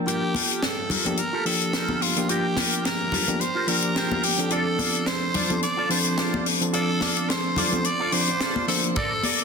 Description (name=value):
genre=nu-disco, nu disco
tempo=108 BPM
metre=4/4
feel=swing 55% on 16ths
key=G minor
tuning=A4 = 439 Hz
part: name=overdriven reed electric piano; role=accompaniment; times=0.0-9.0 s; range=F3 to C5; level=-27 LUFS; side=equal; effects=sidechain pumping
part: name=electric guitar with an envelope filter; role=riff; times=0.0-9.4 s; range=F4 to G5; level=-30 LUFS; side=right 3 dB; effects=analog chorus, low-pass filter
part: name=raspy tenor saxophone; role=melody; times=0.1-9.4 s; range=F4 to D5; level=-27 LUFS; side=right 1 dB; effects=ping-pong delay
part: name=picked electric bass with an envelope filter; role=bass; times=0.1-9.4 s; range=F1 to D2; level=-42 LUFS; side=right 1 dB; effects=none
part: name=tight funk drum kit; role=drums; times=0.1-9.4 s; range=hi-hat, snare drum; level=-26 LUFS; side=left 2 dB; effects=none
part: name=congas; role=percussion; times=0.3-9.4 s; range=none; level=-33 LUFS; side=left 2 dB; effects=none
part: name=kick drum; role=drums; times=9.0-9.1 s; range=none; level=-30 LUFS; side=equal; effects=none
room=wet echo chamber reverb, RT60 2.1 s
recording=dense, heavily limited modern master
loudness=-21 LUFS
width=side -5 dB against mid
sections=0.1-9.4 A section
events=build-up 0.1-9.4; filter sweep on clean electric guitar 0.1-9.4; clean electric guitar fill 3.4-4.5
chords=0.1 Gm7; 4.5 F6